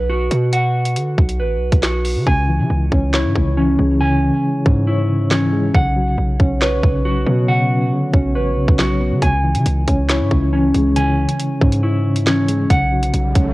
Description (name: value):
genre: hip hop, drill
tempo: 138 BPM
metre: 4/4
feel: half-time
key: C# minor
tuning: A4 = 438 Hz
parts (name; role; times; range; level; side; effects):
- mellow electric guitar; arpeggios; 0.0-13.5 s; C#4 to G#5; -20 LUFS; equal; tape echo
- hard-hitting 808-style bass; bass; 0.0-13.5 s; A1 to D3; -19 LUFS; equal; none
- drill drum kit; drums; 0.3-13.5 s; handclaps, hi-hat, kick drum, snare drum; -17 LUFS; equal; none
- soft electric-piano-like synth keys; accompaniment; 2.3-13.5 s; C#3 to C#5; -19 LUFS; left 1 dB; chorus, tremolo
- riser; sound effects; 12.9-13.5 s; none; -31 LUFS; right 1 dB; none
room: little or no reverb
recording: worn, warbling old tape, cassette tape, warbly pitch drift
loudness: -14 LUFS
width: side -19 dB against mid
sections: 0.0-13.5 A section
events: hi-hats muted 2.3-9.2; riser 12.9-13.5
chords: 0.0 B5; 2.3 C#m; 5.7 Bsus2; 9.2 C#m; 12.7 Bsus2